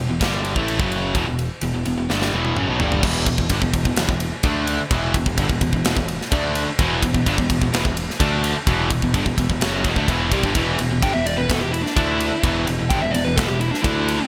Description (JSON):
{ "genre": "hard rock", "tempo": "128 BPM", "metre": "4/4", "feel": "straight", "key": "E dorian", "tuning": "A4 = 440 Hz", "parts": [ { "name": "cranked stack guitar", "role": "riff", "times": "0.0-14.2 s", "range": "E2 to D4", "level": "-30 LUFS", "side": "equal", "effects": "none" }, { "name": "crunchy overdriven guitar", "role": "riff", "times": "0.0-14.2 s", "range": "E2 to D4", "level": "-28 LUFS", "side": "equal", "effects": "subtle chorus" }, { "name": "distorted electric guitar", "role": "riff", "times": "0.0-3.0, 6.8-14.2 s", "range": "E2 to D4", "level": "-29 LUFS", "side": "equal", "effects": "overdrive" }, { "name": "modern bright picked electric bass", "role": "bass", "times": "0.0-14.2 s", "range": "E1 to D2", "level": "-28 LUFS", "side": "equal", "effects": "none" }, { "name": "tight metal drum kit", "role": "drums", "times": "0.2-14.2 s", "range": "crash cymbal, kick drum, ride cymbal, snare drum, toms", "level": "-25 LUFS", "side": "equal", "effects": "gated reverb" }, { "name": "dark smooth lead guitar", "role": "melody", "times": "11.0-14.3 s", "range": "D4 to G5", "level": "-26 LUFS", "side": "equal", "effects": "overdrive, digital delay" } ], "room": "moderate plate reverb, RT60 1.2 s, small room ambience", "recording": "bright 1980s-style digital production", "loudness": "-20 LUFS", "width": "mono", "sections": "0.0-3.0 A section; 3.0-10.6 B section; 10.6-14.3 C section", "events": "drum fill 2.1-3.0; lead electric guitar solo 10.6-14.3", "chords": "0.0 Em" }